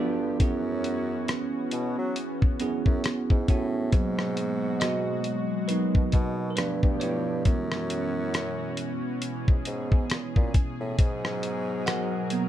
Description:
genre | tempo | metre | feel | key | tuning
contemporary R&B | 68 BPM | 4/4 | swing 58% on 16ths | G# minor | A4 = 440 Hz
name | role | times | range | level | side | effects
bell-like tine electric piano | accompaniment | 0.0-12.5 s | E3 to F#5 | -30 LUFS | right 4 dB | none
lush unison pad | sustained chords | 0.0-12.5 s | B2 to A#4 | -32 LUFS | left 2 dB | chorus
warm bassoon | bass | 0.0-12.5 s | F#2 to F#3 | -33 LUFS | left 1 dB | none
dusty soul sampler-style drum kit | drums | 0.4-12.5 s | hi-hat, kick drum, rim click | -24 LUFS | equal | none
room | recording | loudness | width
light reverb | dark, warm production | -24 LUFS | side -12 dB against mid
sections
0.0-3.9 A section; 3.9-12.5 B section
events
tine electric piano solo 3.9-12.5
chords
0.4 F#7sus4; 3.9 G#m9; 6.6 G9; 7.5 F#7sus4; 11.0 G#m9

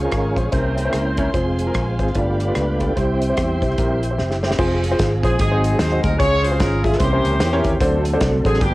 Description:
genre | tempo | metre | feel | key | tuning
uptempo gospel | 148 BPM | 4/4 | swing 61% on 8ths | F harmonic minor | A4 = 441 Hz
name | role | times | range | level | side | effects
warm concert grand piano | accompaniment | 0.0-8.7 s | G2 to E5 | -23 LUFS | left 1 dB | cassette tape
tonewheel organ | sustained chords | 0.0-8.7 s | E3 to G5 | -24 LUFS | right 1 dB | slow rotary speaker, overdrive, chorus vibrato, cassette tape
warm studio string section | sustained chords | 0.0-4.6 s | Ab4 to Db6 | -31 LUFS | equal | cassette tape
fingered electric bass | bass | 0.0-8.7 s | F1 to E2 | -22 LUFS | equal | tube saturation
natural country drum kit | drums | 0.1-8.7 s | crash cymbal, hi-hat, kick drum, rim click, snare drum | -23 LUFS | equal | cassette tape
warm horn section | melody | 5.2-8.7 s | B3 to Db5 | -22 LUFS | equal | cassette tape, analog delay
room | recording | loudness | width
light reverb | home recording on cassette | -16 LUFS | side -19 dB against mid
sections
0.0-4.6 A section; 4.6-8.7 B section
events
tonewheel organ solo 0.0-4.6; drum fill 4.2-4.6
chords
0.0 Db; 0.5 C7b9; 1.3 Fm; 2.2 G7; 3.0 C; 4.6 Fm; 5.4 Ab7; 6.2 Db; 7.0 C7b9; 7.8 D7

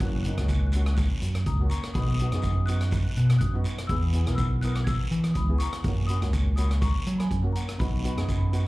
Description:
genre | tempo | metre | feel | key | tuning
calypso | 123 BPM | 4/4 | swing 53% on 16ths | B major | A4 = 441 Hz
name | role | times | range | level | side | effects
marimba with soft mallets | melody | 0.0-8.7 s | F#5 to G#6 | -37 LUFS | left 4 dB | slapback echo
steel pan | accompaniment | 0.0-8.7 s | A#3 to A#4 | -36 LUFS | equal | none
overdriven fingered electric bass | bass | 0.0-8.7 s | F#1 to F#3 | -24 LUFS | equal | none
street-band drum kit | drums | 0.0-8.6 s | hi-hat, kick drum, rim click | -30 LUFS | equal | none
guiro | percussion | 0.5-8.7 s | none | -42 LUFS | right 2 dB | none
room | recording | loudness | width
little or no reverb | live gig heard through the venue's PA, club reverb | -23 LUFS | side -19 dB against mid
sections
0.0-8.7 A section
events
none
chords
0.0 F#; 2.0 B; 3.9 E; 5.8 F#; 7.8 B

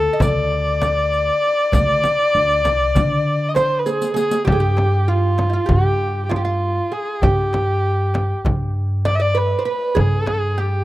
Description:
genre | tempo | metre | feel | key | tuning
Turkish makam ensemble | 197 BPM (eighths) | 9/8 | straight | G makam hicaz from 4.5 s | A4 = 440 Hz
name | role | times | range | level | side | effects
warm kamancheh | melody | 0.0-10.8 s | F4 to E5-41c | -19 LUFS | equal | analog delay
oud | second line | 0.0-10.8 s | E4-40c to Eb5 | -24 LUFS | right 3 dB | analog delay
upright bass | bass | 0.0-10.8 s | C2 to D3 | -20 LUFS | equal | none
darbuka | percussion | 0.2-10.7 s | none | -26 LUFS | equal | none
frame drum | percussion | 0.2-10.4 s | none | -22 LUFS | equal | none
riq | percussion | 0.2-4.5 s | none | -29 LUFS | left 3 dB | none
room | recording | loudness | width
light reverb | rough home demo mix | -16 LUFS | side -16 dB against mid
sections
0.0-4.5 A section; 4.5-10.8 B section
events
drum fill 3.9-4.5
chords
none

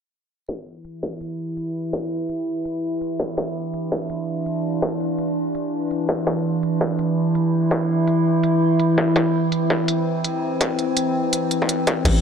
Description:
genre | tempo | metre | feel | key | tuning
half-time drum and bass | 166 BPM | 4/4 | swing 60% on 16ths, half-time | unclear | A4 = 438 Hz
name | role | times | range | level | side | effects
electronic kick drum | drums | 0.5-12.1 s | none | -24 LUFS | left 1 dB | distortion, high-pass filter on kick, high-pass filter on room
industrial drum kit | drums | 0.5-12.1 s | crash cymbal, hi-hat | -25 LUFS | right 1 dB | none
metallic inharmonic drone | texture | 0.9-12.2 s | E3 to E4 | -20 LUFS | right 1 dB | chorus, built-in reverb
long sustained 808-style bass | bass | 12.1-12.2 s | A1 | -17 LUFS | left 1 dB | none
room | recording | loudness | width
wet huge ambient reverb, RT60 8.9 s | dreamy mix soaked in reverb, low-pass filter | -20 LUFS | side -7 dB against mid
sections
0.5-12.1 A section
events
filter sweep 0.5-12.1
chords
0.5 Cadd9/E

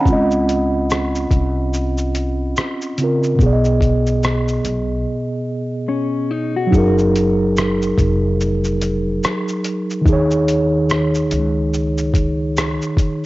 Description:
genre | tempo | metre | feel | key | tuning
lo-fi hip hop | 72 BPM | 4/4 | swing 60% on 16ths | unclear | A4 = 440 Hz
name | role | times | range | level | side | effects
mellow tine electric piano | accompaniment | 0.0-13.3 s | Cb3 to Cb6 | -18 LUFS | right 1 dB | medium stereo tremolo, cassette tape, low-pass filter
upright bass | bass | 0.1-12.8 s | F1 to Eb2 | -21 LUFS | equal | none
lo-fi sampler-style drum kit | drums | 0.1-13.2 s | hi-hat, kick drum, rim click, shaker | -19 LUFS | equal | vintage 12-bit sampler grit, cassette tape
mellow electric guitar | second line | 5.9-7.0 s | Db4 to Gb4 | -22 LUFS | left 5 dB | low-pass filter, analog delay
room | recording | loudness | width
light reverb, digital ambience | home recording on cassette, nothing above 7.8 kHz | -15 LUFS | side -18 dB against mid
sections
0.0-6.7 A section; 6.7-13.3 B section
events
break 5.1-6.7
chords
0.1 Dbmaj9; 3.4 Cb6; 6.7 Gb69; 10.1 Eb7sus4

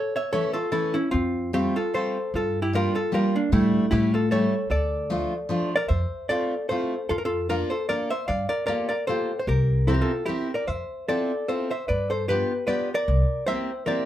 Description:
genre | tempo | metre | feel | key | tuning
musette waltz | 151 BPM | 3/4 | swing 55% on 8ths | D minor, F major from 5.9 s | A4 = 440 Hz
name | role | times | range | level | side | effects
hollow-body jazz guitar | melody | 0.0-14.1 s | A3 to F5 | -25 LUFS | equal | none
picked steel-string acoustic guitar | accompaniment | 0.3-14.1 s | E3 to Bb4 | -27 LUFS | equal | none
upright bass | bass | 1.1-13.2 s | C2 to A2 | -25 LUFS | equal | none
room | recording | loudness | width
moderate small room reverb, RT60 0.6 s | heard from further back in the room | -22 LUFS | side -12 dB against mid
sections
0.0-5.9 A section; 5.9-14.1 B section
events
none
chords
0.0 A; 1.1 Fadd9; 2.3 Gm7; 3.5 A7sus4; 3.9 A7; 4.7 Dm; 5.9 Fmaj7; 7.1 Bbmaj7/F; 8.3 Gm9; 9.5 C7; 10.7 Fmaj7; 11.9 G7; 13.1 C7

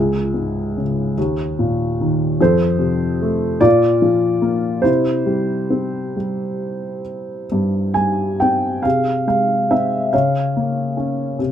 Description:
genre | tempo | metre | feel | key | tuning
classical, lyrical solo piano | 44-50 BPM (dotted quarters) | 6/8 | rubato | F harmonic minor | A4 = 437 Hz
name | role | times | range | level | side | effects
dark upright piano | solo | 0.0-11.5 s | Db2 to Ab5 | -16 LUFS | equal | none
room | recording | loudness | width
little or no reverb | close, detailed microphones | -16 LUFS | side -9 dB against mid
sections
0.0-11.5 A section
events
none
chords
0.0 Db; 1.2 Eb5; 2.4 F; 3.6 Bb; 4.8 C; 8.8 Fmmaj7/C; 10.1 Bbm/Db

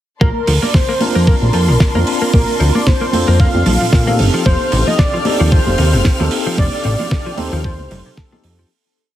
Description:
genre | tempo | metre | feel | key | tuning
nu-disco, nu disco | 113 BPM | 4/4 | swing 56% on 16ths | Bb major | A4 = 440 Hz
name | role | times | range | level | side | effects
wide unison lead | melody | 0.2-8.6 s | A4 to F5 | -21 LUFS | equal | tape echo
dark symphonic string section | sustained chords | 0.2-8.7 s | Bb3 to F6 | -26 LUFS | left 4 dB | sidechain pumping
direct-recorded clean electric guitar | riff | 0.2-8.7 s | C3 to Bb3 | -23 LUFS | left 2 dB | analog chorus
fat analog bass | bass | 0.2-8.6 s | F1 to Bb2 | -15 LUFS | equal | none
electronic kick drum | drums | 0.2-8.3 s | none | -15 LUFS | equal | studio reverb
congas | percussion | 0.2-8.4 s | none | -23 LUFS | right 1 dB | none
damped 70s drum kit | drums | 0.5-8.6 s | hi-hat, snare drum | -21 LUFS | right 2 dB | studio reverb
tine electric piano | accompaniment | 1.0-8.7 s | C4 to Bb4 | -22 LUFS | equal | medium stereo tremolo, sidechain pumping
room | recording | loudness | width
small room ambience | heavily compressed radio sound | -12 LUFS | side -12 dB against mid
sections
0.2-8.7 groove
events
fade-out 5.9-8.7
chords
0.2 Bbmaj9; 4.2 F9

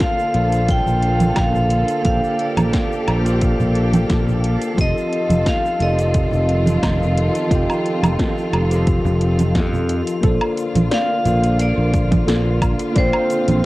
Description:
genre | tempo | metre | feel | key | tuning
sunset chillout | 88 BPM | 4/4 | straight | Bb major | A4 = 439 Hz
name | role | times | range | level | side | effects
vibraphone with hard mallets | melody | 0.0-13.7 s | C5 to G5 | -23 LUFS | equal | cassette tape, tape echo
bell-like tine electric piano | accompaniment | 0.0-13.7 s | F3 to G5 | -23 LUFS | moving between left 4 dB and right 3 dB | auto-pan, low-pass filter, tape echo
muted studio string section | sustained chords | 0.0-13.7 s | D3 to A4 | -25 LUFS | equal | none
deep house drum kit | drums | 0.0-13.6 s | hi-hat, shaker, snare drum, woodblock | -26 LUFS | equal | overdrive, cassette tape
electronic kick drum | drums | 0.0-13.1 s | none | -20 LUFS | equal | overdrive, cassette tape
drifting glass-harmonics texture | texture | 0.0-13.7 s | F5 | -34 LUFS | right 3 dB | chorus, built-in reverb
fingered electric bass | bass | 0.3-13.6 s | F1 to F2 | -19 LUFS | equal | none
congas | percussion | 0.9-13.6 s | none | -22 LUFS | right 2 dB | none
soft round pluck | arpeggios | 10.2-13.3 s | A4 to F5 | -28 LUFS | left 1 dB | wide subtle chorus, tape echo
room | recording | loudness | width
light reverb, digital ambience | home recording on cassette | -15 LUFS | side -19 dB against mid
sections
0.0-10.2 A section; 10.2-13.7 B section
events
none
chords
0.0 Bbmaj7; 4.8 F7; 10.2 Bbmaj7

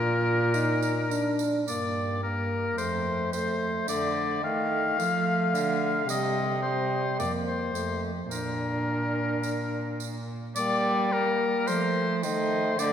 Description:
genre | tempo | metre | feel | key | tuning
classical, renaissance-style consort dance | 108 BPM | 4/4 | straight | Bb major | A4 = 441 Hz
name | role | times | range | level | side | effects
clear oboe | melody | 0.0-12.9 s | Bb4 to F5 | -29 LUFS | left 3 dB | none
warm trombone | accompaniment | 0.0-12.9 s | G3 to F4 | -30 LUFS | equal | none
warm cello | bass | 0.0-12.9 s | F2 to G3 | -30 LUFS | right 2 dB | none
tambourine | percussion | 0.5-12.9 s | none | -42 LUFS | right 8 dB | none
room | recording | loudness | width
wet concert hall reverb, RT60 2.4 s | none | -25 LUFS | side -9 dB against mid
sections
0.0-1.7 A section; 1.7-10.6 B section; 10.6-12.9 B section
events
none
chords
0.0 Bb; 1.7 Gm; 2.8 F; 3.9 Dm; 5.0 F; 6.1 Cm; 7.2 Fsus4; 7.8 F; 8.3 Bb; 10.6 Gm; 11.7 F

